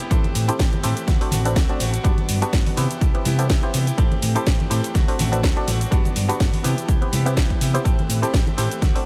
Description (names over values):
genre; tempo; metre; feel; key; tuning
filtered disco house; 124 BPM; 4/4; swing 55% on 16ths; A dorian; A4 = 444 Hz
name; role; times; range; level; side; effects
direct-recorded clean electric guitar; riff; 0.0-9.1 s; E3 to G4; -32 LUFS; equal; vintage 12-bit sampler grit, sidechain pumping, low-pass filter
house drum kit; drums; 0.0-9.0 s; cabasa, hi-hat, snare drum; -30 LUFS; equal; sidechain pumping on hats, sidechain pumping on perc
tambourine and congas; percussion; 0.0-8.9 s; none; -34 LUFS; equal; none
muted clav; accompaniment; 0.1-9.1 s; B3 to D5; -30 LUFS; equal; phaser, sidechain pumping, low-pass filter
hollow-body short-scale fingered electric bass; bass; 0.1-9.0 s; G1 to C3; -25 LUFS; equal; sidechain pumping, low-pass filter
electronic kick drum; drums; 0.1-8.9 s; none; -22 LUFS; equal; none
room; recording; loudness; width
light reverb; none; -20 LUFS; mono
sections
0.0-9.1 A section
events
none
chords
0.1 Am7; 1.1 D7; 2.0 Gmaj7; 2.8 Cmaj7; 4.0 Am7; 5.0 D7; 5.9 Gmaj7; 6.6 Cmaj7; 7.9 Am7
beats
| 0.11 0.59 1.08 1.56 | 2.05 2.53 3.01 3.50 | 3.98 4.47 4.95 5.43 | 5.92 6.40 6.88 7.37 | 7.85 8.34 8.82